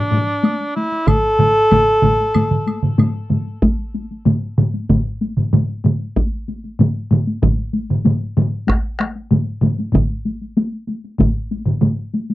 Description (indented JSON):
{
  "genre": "japanese traditional, taiko drum ensemble",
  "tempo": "95 BPM",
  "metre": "4/4",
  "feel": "straight",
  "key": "unclear",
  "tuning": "A4 = 435 Hz",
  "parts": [
    { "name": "mellow cor anglais", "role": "melody", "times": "0.0-3.0 s", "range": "D4 to A4", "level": "-16 LUFS", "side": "equal", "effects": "tape echo" },
    { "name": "solo taiko drums", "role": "percussion", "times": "0.1-12.0 s", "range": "none", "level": "-20 LUFS", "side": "left 2 dB", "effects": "none" },
    { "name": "taiko ensemble", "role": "percussion", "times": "0.1-12.3 s", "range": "none", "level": "-21 LUFS", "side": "left 2 dB", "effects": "none" },
    { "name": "woodblock", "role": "percussion", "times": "0.4-3.1 s", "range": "none", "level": "-33 LUFS", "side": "right 2 dB", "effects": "none" },
    { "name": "solo taiko drums", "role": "percussion", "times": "1.1-12.0 s", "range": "none", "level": "-19 LUFS", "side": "right 4 dB", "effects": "none" },
    { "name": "solo taiko drums", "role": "percussion", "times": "1.1-11.3 s", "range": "none", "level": "-21 LUFS", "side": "equal", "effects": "none" }
  ],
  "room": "moderate booth ambience, RT60 0.2 s",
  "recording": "dry, close 1970s-style studio recording",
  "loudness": "-15 LUFS",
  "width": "side -16 dB against mid",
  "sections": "0.0-3.6 A section; 3.6-12.3 B section",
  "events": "none",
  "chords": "none"
}